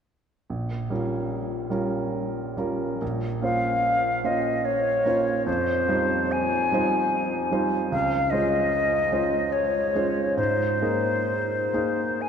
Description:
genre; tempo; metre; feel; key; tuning
classical, impressionist duo for flute and grand piano; 73 BPM; 3/4; uneven beats, rubato; Bb minor; A4 = 440 Hz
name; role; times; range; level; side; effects
clear baby grand piano; accompaniment; 0.5-12.3 s; Bb1 to C5; -26 LUFS; right 2 dB; none
silver concert flute; melody; 3.4-12.3 s; C5 to Ab5; -23 LUFS; left 2 dB; none
room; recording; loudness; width
wet cathedral reverb, RT60 5.2 s; dark, warm production; -22 LUFS; side -7 dB against mid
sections
0.5-3.0 A section; 3.0-12.3 B section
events
none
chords
0.5 Bbm6; 3.0 Bbmadd9; 5.5 Fm9; 7.9 Dbmaj7; 10.4 Abadd9

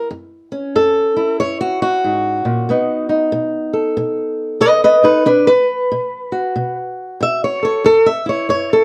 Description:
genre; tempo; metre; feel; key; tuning
acoustic country blues, solo or duo; 93 BPM; 4/4; swing 62% on 8ths; unclear; A4 = 441 Hz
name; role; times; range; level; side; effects
fingerpicked old ladder-braced acoustic guitar; solo; 0.0-8.8 s; F#2 to E5; -16 LUFS; equal; none
room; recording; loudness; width
light reverb; none; -16 LUFS; mono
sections
0.0-8.8 A section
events
steel-string acoustic guitar solo 0.0-8.8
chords
0.0 F#7(no3); 2.7 B7; 5.3 B5; 7.8 F#5

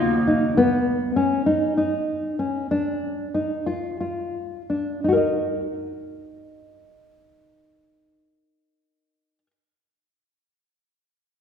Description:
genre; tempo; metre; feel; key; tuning
contemporary instrumental, chamber music in an uneven meter; 169-201 BPM (eighths); 7/8; straight; Eb minor; A4 = 438 Hz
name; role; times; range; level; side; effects
warm clarinet; second line; 0.0-0.5 s; Bb3; -24 LUFS; right 1 dB; none
dark chamber string section; sustained chords; 0.0-0.5 s; Eb2 to Gb3; -34 LUFS; right 2 dB; none
nylon-string guitar; arpeggios; 0.0-9.5 s; B3 to Eb5; -21 LUFS; left 1 dB; none
room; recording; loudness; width
wet concert hall reverb, RT60 1.9 s; recorded in a church or concert hall; -21 LUFS; side -8 dB against mid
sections
0.6-5.0 A section; 5.0-10.0 B section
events
slowing down 0.6-5.0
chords
0.0 Ebm7; 0.6 B; 2.7 Dm; 5.0 Eb5

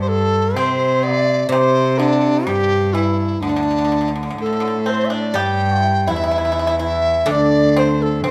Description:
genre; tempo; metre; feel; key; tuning
chinese traditional, Chinese chamber ensemble; 63 BPM; 2/4; rubato; unclear; A4 = 440 Hz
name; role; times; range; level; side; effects
mellow large dizi; melody; 0.0-8.3 s; D4 to G5; -20 LUFS; equal; none
pipa; second line; 0.0-8.3 s; C3 to G4; -27 LUFS; equal; none
rich cello; second line; 0.0-8.3 s; D2 to C3; -23 LUFS; equal; none
guzheng; accompaniment; 0.0-8.3 s; C3 to G3; -24 LUFS; equal; none
room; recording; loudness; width
light reverb; none; -17 LUFS; mono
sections
0.0-5.4 A section; 5.4-8.3 B section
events
none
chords
none

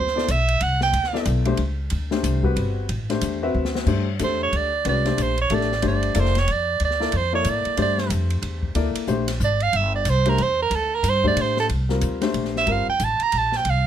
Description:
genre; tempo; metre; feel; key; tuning
modal jazz; 184 BPM; 3/4; swing 62% on 8ths; G dorian from 3.9 s; A4 = 440 Hz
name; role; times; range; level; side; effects
bright soprano saxophone; melody; 0.0-1.2, 4.2-13.9 s; A4 to Bb5; -22 LUFS; right 5 dB; none
upright bass; bass; 0.0-13.9 s; F1 to A2; -23 LUFS; equal; none
open jazz drum kit; drums; 0.1-13.7 s; crash cymbal, hi-hat, kick drum, ride cymbal, snare drum; -32 LUFS; left 2 dB; none
warm grand piano; accompaniment; 0.2-12.9 s; G3 to E5; -25 LUFS; left 6 dB; none
room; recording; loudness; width
little or no reverb; close, detailed microphones; -19 LUFS; side -10 dB against mid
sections
0.0-3.9 A section; 3.9-11.7 B section; 11.7-13.9 B section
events
drum fill 3.5-3.9; soprano saxophone solo 3.9-13.9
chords
0.0 D9sus4; 3.9 G9sus4; 11.7 C9sus4

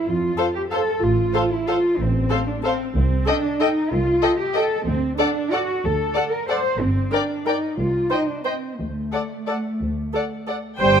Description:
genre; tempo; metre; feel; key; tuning
classical, orchestral ballroom waltz; 169-203 BPM; 3/4; rubato; unclear; A4 = 440 Hz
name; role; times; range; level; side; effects
muted chamber cello section; bass; 0.0-11.0 s; G2 to C5; -23 LUFS; right 1 dB; none
muted chamber double bass section; bass; 0.1-11.0 s; G1 to F2; -24 LUFS; right 1 dB; none
muted chamber violin section; melody; 0.4-11.0 s; F5 to G5; -31 LUFS; left 4 dB; none
muted chamber violin section; second line; 0.4-11.0 s; C5 to G5; -27 LUFS; left 3 dB; none
muted chamber viola section; accompaniment; 0.4-11.0 s; A4 to C5; -25 LUFS; right 1 dB; none
warm French horn section; sustained chords; 10.8-11.0 s; G3; -20 LUFS; left 4 dB; none
room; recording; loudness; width
light reverb; none; -19 LUFS; side -8 dB against mid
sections
0.0-10.8 A section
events
none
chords
0.0 F; 1.0 F/A; 3.0 Adim/C; 4.9 D7; 6.8 Gm; 7.8 Cm; 8.8 D5

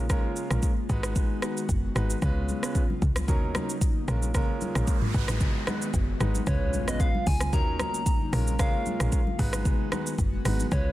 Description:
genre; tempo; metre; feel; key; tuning
afrobeats; 113 BPM; 4/4; swing 55% on 16ths; unclear; A4 = 440 Hz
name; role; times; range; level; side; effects
clear baby grand piano; accompaniment; 0.0-10.9 s; Gb3 to Cb5; -34 LUFS; right 2 dB; none
airy breathy pad; sustained chords; 0.0-10.9 s; Db3 to Gb4; -35 LUFS; left 1 dB; chorus
woody log drum bass; bass; 0.0-10.9 s; Gb1 to Eb2; -28 LUFS; equal; none
afro-pop drum kit; drums; 0.1-10.9 s; hi-hat, kick drum, rim click, shaker, toms; -27 LUFS; equal; soft clipping on snare
congas; percussion; 2.2-10.9 s; none; -37 LUFS; left 3 dB; none
noise sweep and impact; sound effects; 4.7-8.6 s; none; -37 LUFS; equal; none
soft struck synth lead; melody; 6.5-10.9 s; Db5 to Bb5; -33 LUFS; left 1 dB; chorus
room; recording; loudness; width
little or no reverb; dense, heavily limited modern master; -24 LUFS; side -15 dB against mid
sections
0.0-6.5 A section; 6.5-10.9 B section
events
noise sweep 4.7-6.5; impact 6.5-8.6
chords
0.0 Bbm7; 0.9 Abm7; 2.2 Db7; 3.3 Ebm7; 4.1 Bbm7; 5.1 Abm7; 6.5 Db7; 7.5 Ebm7; 8.3 Bbm7; 9.4 Abm7

